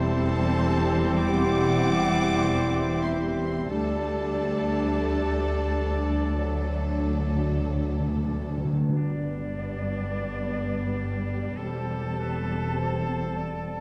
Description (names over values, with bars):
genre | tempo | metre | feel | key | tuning
classical, slow romantic movement for symphony orchestra | 43-52 BPM | 4/4 | rubato | G major | A4 = 440 Hz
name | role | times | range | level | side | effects
rich studio violin section | melody | 0.0-13.8 s | G4 to D6 | -40 LUFS | equal | none
bright oboe | second line | 0.0-13.8 s | D4 to D5 | -40 LUFS | equal | none
rich studio violin section | second line | 0.0-13.8 s | B3 to A4 | -40 LUFS | equal | none
small flute group | second line | 0.0-13.8 s | C5 to A5 | -38 LUFS | equal | none
warm clarinet | second line | 0.0-13.8 s | C4 to D5 | -39 LUFS | equal | none
dark bassoon | accompaniment | 0.0-8.6 s | F#3 to G3 | -36 LUFS | equal | none
warm studio viola section | accompaniment | 0.0-13.8 s | F#3 to C4 | -36 LUFS | equal | none
mellow French horn section | sustained chords | 0.0-13.8 s | F#3 to E4 | -36 LUFS | equal | none
clear trumpet section | stabs | 0.0-8.6 s | C5 to D5 | -39 LUFS | equal | none
rich studio double bass section | bass | 0.0-13.8 s | E1 to D2 | -33 LUFS | equal | none
warm studio cello section | bass | 0.0-13.8 s | D2 to G2 | -33 LUFS | equal | none
timpani | percussion | 6.4-9.0 s | D3 | -32 LUFS | equal | none
room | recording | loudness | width
wet scoring stage reverb, RT60 1.7 s | dark, warm production | -26 LUFS | mono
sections
0.0-9.0 A section; 9.0-13.8 B section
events
timpani fill 6.4-9.0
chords
0.0 C/E; 3.7 Dsus4; 6.4 D; 9.0 G; 11.6 C/E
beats
1.18 2.40 | 3.70 5.04 6.36 7.67 | 8.97 10.24 11.57 12.78